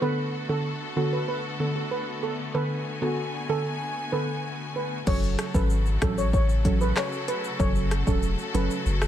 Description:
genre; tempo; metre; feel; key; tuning
dancehall; 95 BPM; 4/4; straight; F# minor; A4 = 440 Hz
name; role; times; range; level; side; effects
steel pan; melody; 0.0-8.7 s; F#4 to C#5; -32 LUFS; right 1 dB; none
soft round pluck; accompaniment; 0.0-8.8 s; D3 to A4; -29 LUFS; right 2 dB; chorus
rich symphonic string section; sustained chords; 0.0-9.1 s; C#3 to G#5; -33 LUFS; left 2 dB; sidechain pumping
punchy sub bass; bass; 5.1-9.1 s; E1 to A1; -26 LUFS; left 1 dB; none
afro-pop drum kit; drums; 5.1-9.1 s; crash cymbal, handclaps, hi-hat, kick drum, rim click, shaker; -26 LUFS; left 1 dB; vintage 12-bit sampler grit
room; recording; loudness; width
digital ambience; none; -24 LUFS; side -11 dB against mid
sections
0.0-5.1 A section; 5.1-9.1 B section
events
none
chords
0.0 Bm7; 5.1 F#m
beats
| 0.02 0.65 1.28 1.91 | 2.54 3.18 3.81 4.44 | 5.07 5.70 6.33 6.96 | 7.60 8.23 8.86

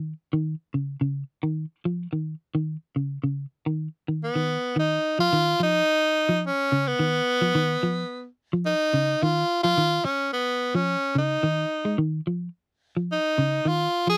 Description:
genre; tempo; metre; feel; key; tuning
afrobeat; 108 BPM; 4/4; straight; G# dorian; A4 = 440 Hz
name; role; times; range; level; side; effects
clean electric guitar; arpeggios; 0.0-14.2 s; C#3 to G#3; -28 LUFS; equal; none
edgy tenor saxophone; melody; 4.2-14.2 s; B3 to G#4; -25 LUFS; equal; none
room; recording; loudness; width
light reverb; dry, close 1970s-style studio recording; -25 LUFS; mono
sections
0.0-4.8 A section; 4.8-14.2 B section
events
none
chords
0.0 C#sus2; 4.8 G#5 (rootless)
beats
| 0.33 0.88 1.44 1.99 | 2.55 3.10 3.66 4.21 | 4.77 5.33 5.88 6.44 | 6.99 7.55 8.10 8.66 | 9.21 9.77 10.32 10.88 | 11.44 11.99 12.55 13.10 | 13.66

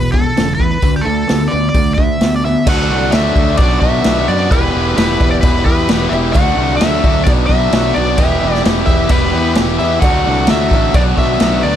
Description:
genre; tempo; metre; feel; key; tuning
classic rock; 130 BPM; 4/4; straight; E minor; A4 = 439 Hz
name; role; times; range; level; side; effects
nasal lead guitar with a parked wah; melody; 0.0-11.8 s; G4 to F#5; -18 LUFS; equal; overdrive
distorted electric guitar; riff; 0.0-11.8 s; E2 to G4; -20 LUFS; right 12 dB; overdrive
overdriven electric guitar; riff; 0.0-11.8 s; E2 to G4; -21 LUFS; left 14 dB; none
fuzz fingered electric bass; bass; 0.0-11.8 s; E1 to F#2; -18 LUFS; equal; overdrive
vintage drum kit; drums; 0.1-11.5 s; crash cymbal, hi-hat, kick drum, snare drum; -15 LUFS; equal; none
crunchy overdriven guitar; riff; 2.7-11.8 s; B2 to G4; -20 LUFS; left 2 dB; none
cowbell; percussion; 2.7-11.8 s; none; -30 LUFS; right 5 dB; none
room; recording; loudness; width
light reverb; none; -11 LUFS; side -10 dB against mid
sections
0.0-2.7 A section; 2.7-11.8 B section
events
none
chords
0.0 E5; 0.8 Dsus2; 2.7 D; 3.6 Bm; 4.5 Em; 6.3 D; 7.3 Bm; 8.2 Em; 10.0 D; 11.0 Bm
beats
0.37 | 0.83 1.29 1.75 2.21 | 2.67 3.13 3.59 4.05 | 4.50 4.96 5.42 5.88 | 6.34 6.80 7.26 7.72 | 8.19 8.65 9.11 9.57 | 10.03 10.49 10.95 11.42

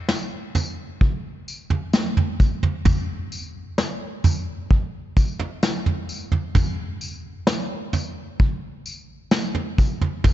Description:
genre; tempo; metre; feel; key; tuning
dream pop; 65 BPM; 4/4; straight; none; none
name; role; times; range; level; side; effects
vintage brush drum kit; drums; 0.1-10.3 s; kick drum, snare drum, tambourine, toms; -21 LUFS; equal; none
room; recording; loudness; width
moderate concert hall reverb, RT60 2.3 s; dark, warm production, nothing above 7.9 kHz; -21 LUFS; side -13 dB against mid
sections
0.0-10.3 A section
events
none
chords
none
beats
0.09 1.01 1.93 | 2.86 3.78 4.70 5.62 | 6.55 7.47 8.39 9.32 | 10.24

